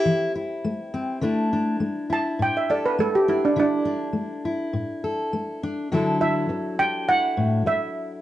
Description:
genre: acoustic folk duo or small band.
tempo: 102 BPM.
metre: 4/4.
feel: straight.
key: unclear.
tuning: A4 = 439 Hz.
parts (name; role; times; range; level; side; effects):
steel pan; melody; 0.0-8.2 s; D4 to A5; -22 LUFS; right 2 dB; none.
fingerpicked steel-string acoustic guitar; accompaniment; 0.0-8.2 s; A2 to A4; -24 LUFS; left 2 dB; none.
room: moderate studio reverb, RT60 0.6 s.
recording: worn, warbling old tape, cassette tape, warbly pitch drift, nothing above 10.7 kHz.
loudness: -21 LUFS.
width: side -13 dB against mid.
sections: 0.0-5.9 A section; 5.9-8.2 B section.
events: steel pan solo 0.0-5.9.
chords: 0.0 Am7; 1.2 Dsus2; 5.9 Dadd9.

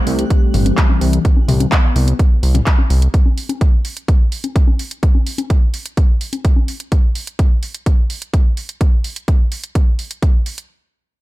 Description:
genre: progressive house.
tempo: 127 BPM.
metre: 4/4.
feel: straight.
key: unclear.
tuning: A4 = 439 Hz.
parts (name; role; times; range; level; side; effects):
lush unison pad; sustained chords; 0.0-3.1 s; E3 to G4; -22 LUFS; left 2 dB; chorus, sidechain pumping.
fat analog bass; bass; 0.1-3.1 s; G1 to C2; -14 LUFS; equal; sidechain pumping.
house drum kit; drums; 0.1-10.7 s; handclaps, hi-hat; -25 LUFS; right 1 dB; overdrive.
electronic kick drum; drums; 0.3-10.3 s; none; -13 LUFS; equal; overdrive.
electronic toms and congas; percussion; 0.5-6.7 s; none; -23 LUFS; left 5 dB; sidechain pumping on perc, sidechain pumping on toms.
room: digital ambience.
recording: dark, warm production.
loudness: -13 LUFS.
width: side -18 dB against mid.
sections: 0.0-10.7 A section.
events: none.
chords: 0.0 Am7/C; 1.2 Cmaj7; 3.1 N.C..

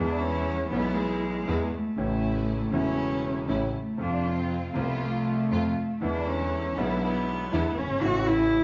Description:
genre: tango.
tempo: 120 BPM.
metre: 4/4.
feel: rubato.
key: unclear.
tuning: A4 = 438 Hz.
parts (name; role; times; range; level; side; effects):
warm cello; second line; 0.0-8.6 s; G#3 to F#4; -31 LUFS; equal; none.
warm concert grand piano; accompaniment; 0.0-8.6 s; E1 to G#4; -31 LUFS; equal; none.
muted studio string section; stabs; 0.0-8.6 s; D3 to F4; -39 LUFS; equal; none.
bright double bass; bass; 0.0-8.6 s; E1 to F2; -35 LUFS; equal; none.
room: wet large studio reverb, RT60 1.1 s.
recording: band playing live in one room, nothing above 7.5 kHz.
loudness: -28 LUFS.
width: mono.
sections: 0.0-8.6 A section.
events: cello solo 0.0-8.6.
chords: 0.0 E; 2.0 A; 4.0 F; 6.0 E7; 8.0 A.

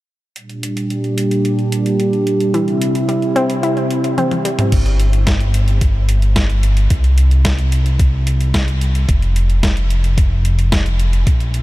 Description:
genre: synthwave.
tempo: 110 BPM.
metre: 4/4.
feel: straight.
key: G dorian.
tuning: A4 = 441 Hz.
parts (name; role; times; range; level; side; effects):
warm analog pad; sustained chords; 0.4-4.7 s; Bb2 to G4; -18 LUFS; right 1 dB; chorus, sidechain pumping.
clean 12-bit digital drum machine; drums; 0.4-11.6 s; crash cymbal, hi-hat, snare drum, toms; -23 LUFS; equal; none.
analog pluck; arpeggios; 2.5-4.7 s; E3 to E4; -21 LUFS; left 1 dB; chorus, tape echo.
chorused synth bass; bass; 4.7-11.6 s; F1 to C2; -14 LUFS; equal; sidechain pumping.
electronic kick drum; drums; 4.7-11.4 s; none; -16 LUFS; equal; none.
room: light reverb.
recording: none.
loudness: -13 LUFS.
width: side -17 dB against mid.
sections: 0.4-4.7 A section; 4.7-11.6 B section.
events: filter sweep on analog synth pad 0.4-4.7; drum fill 4.2-4.7.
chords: 0.4 Gm; 2.5 C; 4.7 N.C..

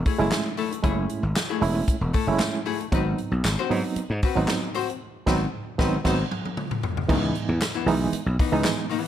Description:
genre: funk.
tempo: 115 BPM.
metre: 4/4.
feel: straight.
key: unclear.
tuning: A4 = 440 Hz.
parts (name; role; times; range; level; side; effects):
gritty slap bass; bass; 0.0-8.6 s; E1 to G#2; -25 LUFS; equal; overdrive.
archtop guitar, miked and amplified; accompaniment; 0.1-9.1 s; E3 to B#4; -30 LUFS; left 10 dB; none.
swinging big-band drum kit; drums; 0.1-9.0 s; crash cymbal, handclaps, hi-hat, kick drum, snare drum, toms; -27 LUFS; equal; none.
barky reed electric piano; stabs; 0.2-8.9 s; E3 to E4; -26 LUFS; right 5 dB; overdrive, fast tremolo.
tambourine; percussion; 0.3-8.8 s; none; -36 LUFS; left 6 dB; none.
room: light reverb, small room ambience.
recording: none.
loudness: -22 LUFS.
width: side -10 dB against mid.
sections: 0.0-7.1 A section; 7.1-9.1 B section.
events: band accent 5.0-7.1; drum fill 6.0-7.1.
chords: 0.0 F#m9; 2.9 G#7#9; 7.1 C#m9.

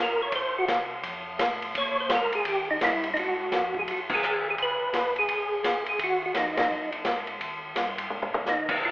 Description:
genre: soul jazz organ trio.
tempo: 170 BPM.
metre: 4/4.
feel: swing 64% on 8ths.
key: unclear.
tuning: A4 = 439 Hz.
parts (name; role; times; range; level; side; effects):
percussive tonewheel organ; melody; 0.0-8.9 s; Eb4 to Db5; -26 LUFS; equal; slow rotary speaker, chorus vibrato.
mellow tonewheel organ; bass; 0.0-8.9 s; G1 to Bb2; -49 LUFS; equal; chorus vibrato, slow rotary speaker.
vintage drum kit; drums; 0.3-8.9 s; crash cymbal, hi-hat, kick drum, ride cymbal, snare drum, toms; -27 LUFS; equal; none.
room: moderate recital hall reverb, RT60 1.3 s.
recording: recorded in a church or concert hall, telephone sound.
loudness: -24 LUFS.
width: side -21 dB against mid.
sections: 0.0-3.2 A section; 3.2-8.9 B section.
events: tonewheel organ solo 0.0-3.2; band accent 4.0, 6.5; drum fill 8.1-8.5.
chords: 0.3 Ab; 1.0 F; 1.7 Abadd9; 2.5 Eb; 3.2 Ab5; 4.6 Db5; 6.0 Ab5; 7.4 Eb; 8.1 Ab5.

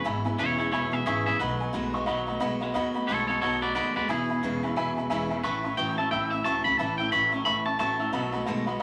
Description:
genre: rockabilly.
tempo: 178 BPM.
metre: 4/4.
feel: swing 60% on 8ths.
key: E major.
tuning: A4 = 438 Hz.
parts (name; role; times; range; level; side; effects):
twangy electric guitar; melody; 0.0-8.4 s; E4 to B5; -30 LUFS; equal; none.
picked steel-string acoustic guitar; accompaniment; 0.0-8.8 s; E2 to F#4; -36 LUFS; equal; none.
twangy electric guitar; riff; 0.0-8.8 s; E2 to G#3; -35 LUFS; equal; spring reverb.
upright bass; bass; 0.0-8.8 s; E1 to D#2; -39 LUFS; equal; none.
honky-tonk upright piano; accompaniment; 0.1-8.8 s; D#5 to E6; -34 LUFS; equal; none.
room: wet small room reverb, RT60 0.6 s.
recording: none.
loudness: -27 LUFS.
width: mono.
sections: 0.0-8.8 A section.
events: none.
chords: 0.0 E; 1.4 B7; 4.1 E; 5.4 A; 8.1 B7.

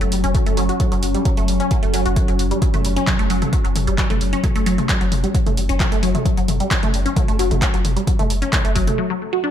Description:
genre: driving peak-time techno.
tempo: 132 BPM.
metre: 4/4.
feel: straight.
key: F# minor.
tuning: A4 = 440 Hz.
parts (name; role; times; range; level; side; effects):
resonant blip pluck; riff; 0.0-9.5 s; F#3 to F#4; -22 LUFS; equal; chorus, phaser, sidechain pumping, ping-pong delay.
warm sub bass; bass; 0.0-8.9 s; F#1; -23 LUFS; equal; overdrive, sidechain pumping, low-pass filter.
deep dark ambient pad; drone; 0.0-9.0 s; F#3 to C#4; -26 LUFS; left 1 dB; chorus, built-in reverb, sidechain pumping.
punchy analog drum machine; drums; 0.0-9.0 s; handclaps, hi-hat, toms; -25 LUFS; equal; sidechain pumping on hats, sidechain pumping on toms.
electronic kick drum; drums; 0.3-8.8 s; none; -20 LUFS; equal; none.
room: light reverb, digital ambience.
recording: none.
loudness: -16 LUFS.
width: side -10 dB against mid.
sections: 0.0-9.5 A section.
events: break 9.0-9.5.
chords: 0.0 F#5.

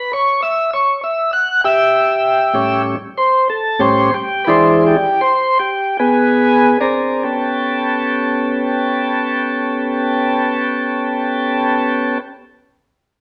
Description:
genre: blues.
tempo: 47-67 BPM (dotted quarters).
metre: 12/8.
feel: straight.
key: A mixolydian.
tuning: A4 = 440 Hz.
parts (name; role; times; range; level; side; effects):
tonewheel organ; sustained chords; 0.0-12.2 s; A2 to F#5; -16 LUFS; equal; slow rotary speaker.
room: wet studio reverb, RT60 0.9 s.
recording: none.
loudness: -16 LUFS.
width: mono.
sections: 0.0-6.8 A section; 6.8-12.0 B section.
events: tonewheel organ solo 0.0-6.8; slowing down 1.3-6.8.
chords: 0.0 A7; 4.5 E7; 6.8 A9.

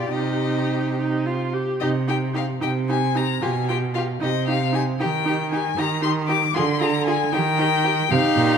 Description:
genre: quick classical-period movement for string quartet.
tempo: 76 BPM (dotted quarters).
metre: 6/8.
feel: rubato.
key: C minor.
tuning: A4 = 440 Hz.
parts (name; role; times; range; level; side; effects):
rich violin; melody; 0.0-8.6 s; D5 to D6; -24 LUFS; left 10 dB; none.
rich violin; second line; 0.0-8.6 s; G4 to Ab4; -30 LUFS; left 4 dB; none.
rich viola; accompaniment; 0.0-8.6 s; Eb4 to G4; -26 LUFS; right 3 dB; none.
bright cello; bass; 0.0-8.6 s; Bb2 to Eb3; -23 LUFS; right 4 dB; none.
room: moderate concert hall reverb, RT60 1.9 s.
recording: none.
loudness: -20 LUFS.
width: side -7 dB against mid.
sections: 0.0-1.8 A section; 1.8-8.6 A section.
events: none.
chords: 0.1 Cm; 3.4 G7/B; 4.2 Cm; 5.0 Eb; 6.5 Dm7b5; 7.3 Eb.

